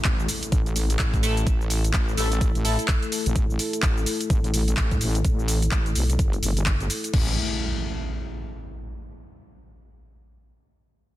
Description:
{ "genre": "bass house", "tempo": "127 BPM", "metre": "4/4", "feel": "swing 60% on 16ths", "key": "unclear", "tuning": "A4 = 440 Hz", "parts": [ { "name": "dark analog pad", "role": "sustained chords", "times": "0.0-7.4 s", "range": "A3 to A5", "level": "-32 LUFS", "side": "left 3 dB", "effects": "chorus, sidechain pumping" }, { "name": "wobble bass", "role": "bass", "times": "0.0-7.4 s", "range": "G1 to B1", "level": "-24 LUFS", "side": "equal", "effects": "chorus, tube saturation, sidechain pumping" }, { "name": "big-room dance drum kit", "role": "drums", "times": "0.0-7.2 s", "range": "cabasa, crash cymbal, handclaps, hi-hat", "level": "-28 LUFS", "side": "equal", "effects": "overdrive, small room ambience" }, { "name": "electronic kick drum", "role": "drums", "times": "0.0-7.2 s", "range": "none", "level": "-23 LUFS", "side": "equal", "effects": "small room ambience" }, { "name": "impact", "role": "sound effects", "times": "0.0-1.5, 7.1-9.0 s", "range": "none", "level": "-33 LUFS", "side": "equal", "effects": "none" }, { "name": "band-passed chord stab", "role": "stabs", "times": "1.2-2.8 s", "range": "A3 to A4", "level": "-30 LUFS", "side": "equal", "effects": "phaser, wide subtle chorus, sidechain pumping, ping-pong delay" } ], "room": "digital ambience", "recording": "dense, heavily limited modern master", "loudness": "-21 LUFS", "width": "side -15 dB against mid", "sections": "0.0-7.1 A section; 7.1-9.0 B section", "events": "impact 0.0-1.5; filter sweep on wobble bass 0.0-7.1", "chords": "0.0 A5" }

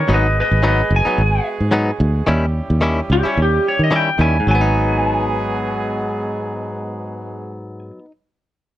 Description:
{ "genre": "blues", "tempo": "110 BPM", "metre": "4/4", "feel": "swing 55% on 16ths", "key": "G# minor", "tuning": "A4 = 442 Hz", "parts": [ { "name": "lightly driven lead guitar", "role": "melody", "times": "0.0-7.8 s", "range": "G4 to G#5", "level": "-19 LUFS", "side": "equal", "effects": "none" }, { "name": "dark horn section", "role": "sustained chords", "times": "0.0-7.7 s", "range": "G3 to G#4", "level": "-27 LUFS", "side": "right 3 dB", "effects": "none" }, { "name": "fingered electric bass", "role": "bass", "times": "0.0-7.7 s", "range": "F#1 to D#3", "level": "-17 LUFS", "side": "equal", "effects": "none" }, { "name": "direct-recorded clean electric guitar", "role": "stabs", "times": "0.1-8.1 s", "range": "G#2 to E4", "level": "-21 LUFS", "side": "left 2 dB", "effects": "none" } ], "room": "light reverb", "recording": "none", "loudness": "-15 LUFS", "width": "side -13 dB against mid", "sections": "0.0-4.5 A section; 4.5-8.8 B section", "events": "none", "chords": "0.1 G#m7; 2.3 D#7b9; 4.5 G#m7" }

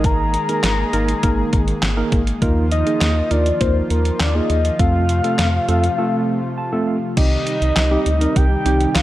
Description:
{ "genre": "synth-pop", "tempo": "101 BPM", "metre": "4/4", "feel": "straight", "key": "unclear", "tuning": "A4 = 440 Hz", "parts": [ { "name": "soft octave-layered synth lead", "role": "melody", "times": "0.0-9.0 s", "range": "Bb4 to Bb5", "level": "-22 LUFS", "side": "left 1 dB", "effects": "chorus, phaser, slapback echo" }, { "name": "tine electric piano", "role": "accompaniment", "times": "0.0-8.9 s", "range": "G3 to A5", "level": "-23 LUFS", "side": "right 2 dB", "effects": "medium stereo tremolo" }, { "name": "brassy analog pad", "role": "sustained chords", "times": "0.0-9.0 s", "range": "C3 to Ab4", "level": "-24 LUFS", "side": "equal", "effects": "chorus" }, { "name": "rubbery square bass", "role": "bass", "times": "0.0-9.0 s", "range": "Ab1 to F2", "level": "-19 LUFS", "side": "equal", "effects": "none" }, { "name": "clean 12-bit digital drum machine", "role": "drums", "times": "0.0-9.0 s", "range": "crash cymbal, handclaps, hi-hat, kick drum, snare drum", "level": "-21 LUFS", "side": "equal", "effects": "none" } ], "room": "light reverb", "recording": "dark, warm production", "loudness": "-15 LUFS", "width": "side -15 dB against mid", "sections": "0.0-7.2 A section; 7.2-9.0 B section", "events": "break 6.0-7.2; tine electric piano fill 6.3-7.2", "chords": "0.0 Absus2; 2.4 Ebsus2; 4.8 F; 7.2 Cm" }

